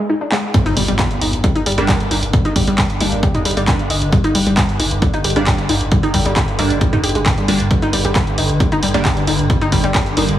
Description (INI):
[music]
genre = driving peak-time techno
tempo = 134 BPM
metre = 4/4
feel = straight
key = G minor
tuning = A4 = 439 Hz
[part]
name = warbly dusty pluck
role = riff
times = 0.0-10.2 s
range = G3 to G4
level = -20 LUFS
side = left 1 dB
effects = chorus, sidechain pumping, tape echo
[part]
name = punchy analog drum machine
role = drums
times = 0.3-10.4 s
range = handclaps, hi-hat, toms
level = -21 LUFS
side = equal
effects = sidechain pumping on hats, sidechain pumping on toms
[part]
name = swarming drone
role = drone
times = 1.2-10.4 s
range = G2 to D3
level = -23 LUFS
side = equal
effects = built-in reverb, sidechain pumping
[part]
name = electronic kick drum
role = drums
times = 0.5-10.0 s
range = none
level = -17 LUFS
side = equal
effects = none
[part]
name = impact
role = sound effects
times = 0.5-2.3 s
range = none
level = -24 LUFS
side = equal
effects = none
[part]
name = saturated sub bass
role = bass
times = 0.7-10.4 s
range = G1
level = -23 LUFS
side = equal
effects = tube saturation, sidechain pumping, low-pass filter
[part]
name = rave stab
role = stabs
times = 1.8-10.4 s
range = G3 to D4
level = -22 LUFS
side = right 2 dB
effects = chorus, built-in reverb, sidechain pumping, dub echo
[sound]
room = light reverb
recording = heavily compressed radio sound, multiband compression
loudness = -13 LUFS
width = side -12 dB against mid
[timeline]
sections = 0.5-10.4 A section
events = break 0.0-0.5; drum fill 0.3; drop 0.5-10.4; impact 0.5-2.3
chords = 0.0 N.C.; 0.5 Gm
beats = 0.10 | 0.54 0.99 1.44 1.89 | 2.33 2.78 3.23 3.68 | 4.12 4.57 5.02 5.47 | 5.92 6.36 6.81 7.26 | 7.71 8.15 8.60 9.05 | 9.50 9.95